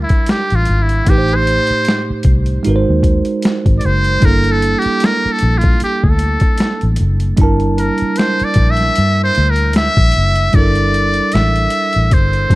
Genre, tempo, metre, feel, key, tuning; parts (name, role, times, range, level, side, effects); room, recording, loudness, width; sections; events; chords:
R&B, neo-soul; 76 BPM; 4/4; swing 56% on 16ths; G dorian; A4 = 439 Hz
trumpet with metal mute; melody; 0.0-12.6 s; E4 to E5; -17 LUFS; equal
bell-like tine electric piano; accompaniment; 0.0-12.6 s; A2 to A5; -19 LUFS; right 4 dB
vintage muted fingered electric bass; bass; 0.0-12.6 s; Gb1 to G2; -15 LUFS; equal
boom bap sampler-style drum kit; drums; 0.1-12.6 s; hi-hat, kick drum, snare drum; -14 LUFS; equal
little or no reverb; dark, warm production; -11 LUFS; side -18 dB against mid
0.0-10.5 A section; 10.5-12.6 B section
muted trumpet solo 0.0-10.5
0.0 Gm69; 1.1 Am7b5; 2.6 Ab9; 4.2 Gm69